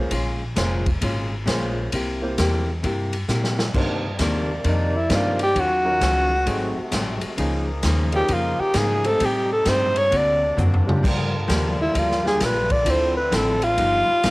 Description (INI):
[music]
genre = jazz, big band swing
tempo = 132 BPM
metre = 4/4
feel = swing 65% on 8ths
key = unclear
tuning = A4 = 438 Hz
[part]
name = warm concert grand piano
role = accompaniment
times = 0.0-13.1 s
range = F3 to C5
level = -29 LUFS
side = right 1 dB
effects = cassette tape
[part]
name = upright bass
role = bass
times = 0.0-14.3 s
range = F1 to Bb2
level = -25 LUFS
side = equal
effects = none
[part]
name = archtop guitar, miked and amplified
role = accompaniment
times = 0.1-14.3 s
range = G2 to G4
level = -27 LUFS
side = left 1 dB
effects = cassette tape
[part]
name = swinging big-band drum kit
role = drums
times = 0.1-14.3 s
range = crash cymbal, hi-hat, kick drum, ride cymbal, snare drum, toms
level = -26 LUFS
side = equal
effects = cassette tape
[part]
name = clear trombone section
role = sustained chords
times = 3.7-14.3 s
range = C3 to D5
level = -31 LUFS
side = equal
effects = cassette tape
[part]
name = breathy alto saxophone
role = melody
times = 4.7-14.3 s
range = Eb4 to D5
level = -20 LUFS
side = equal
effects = cassette tape
[sound]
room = moderate small room reverb, RT60 0.5 s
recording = home recording on cassette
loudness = -19 LUFS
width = side -21 dB against mid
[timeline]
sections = 0.0-3.7 A section; 3.7-14.3 B section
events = drum fill 3.3-3.7, 10.6-11.0; alto saxophone solo 3.7-14.3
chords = 0.1 Bbm7; 1.9 C7; 3.7 Cm9; 5.6 Ebm9; 6.5 Ab7b9; 7.4 Db69; 9.2 Am7b5; 10.1 D7b13; 11.0 Gm7; 12.9 Dm9; 13.8 G7b13